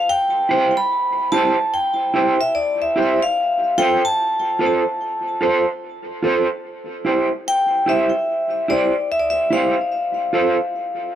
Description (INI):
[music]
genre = reggae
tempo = 73 BPM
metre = 4/4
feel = swing 65% on 16ths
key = C major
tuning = A4 = 440 Hz
[part]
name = vibraphone with hard mallets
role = melody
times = 0.0-11.2 s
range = D5 to B5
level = -19 LUFS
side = left 1 dB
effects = tape echo
[part]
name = electric guitar at the edge of break-up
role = accompaniment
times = 0.5-10.6 s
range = E4 to C5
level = -20 LUFS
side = right 2 dB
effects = harmonic tremolo, tape echo
[sound]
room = light reverb, small room reverb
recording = dry, close 1970s-style studio recording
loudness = -16 LUFS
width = side -10 dB against mid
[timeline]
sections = 0.0-11.2 A section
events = none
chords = 0.1 C; 3.4 F; 6.6 C; 9.9 F